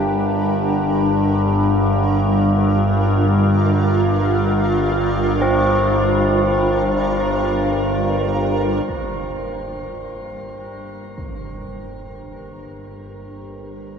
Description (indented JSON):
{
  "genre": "dark ambient drone",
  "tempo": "free time",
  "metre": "none",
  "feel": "none",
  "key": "G minor",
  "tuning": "A4 = 444 Hz",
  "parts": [
    { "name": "granular cloud pad", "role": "sustained chords", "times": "0.0-14.0 s", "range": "G3 to Bb4", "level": "-22 LUFS", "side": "right 1 dB", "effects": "built-in reverb, shimmer reverb" },
    { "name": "tubular bells", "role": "arpeggios", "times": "0.0-12.3 s", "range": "C4", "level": "-24 LUFS", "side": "equal", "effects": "diffuse ambient delay, shimmer reverb" },
    { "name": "overtone-sweeping drone", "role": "drone", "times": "0.0-14.0 s", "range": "G1 to G2", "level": "-20 LUFS", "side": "equal", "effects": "chorus, built-in reverb" },
    { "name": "impact", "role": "percussion", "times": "8.9-11.4 s", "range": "none", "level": "-37 LUFS", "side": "equal", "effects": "low-pass filter on sfx" },
    { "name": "quartz singing bowl", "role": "texture", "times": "8.9-14.0 s", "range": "Bb3 to Bb4", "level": "-42 LUFS", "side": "right 2 dB", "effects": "none" }
  ],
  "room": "wet cathedral reverb, RT60 6.2 s",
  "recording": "none",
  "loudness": "-16 LUFS",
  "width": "side -6 dB against mid",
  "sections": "0.0-8.9 A section; 8.9-14.0 B section",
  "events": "none",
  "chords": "0.0 Gm"
}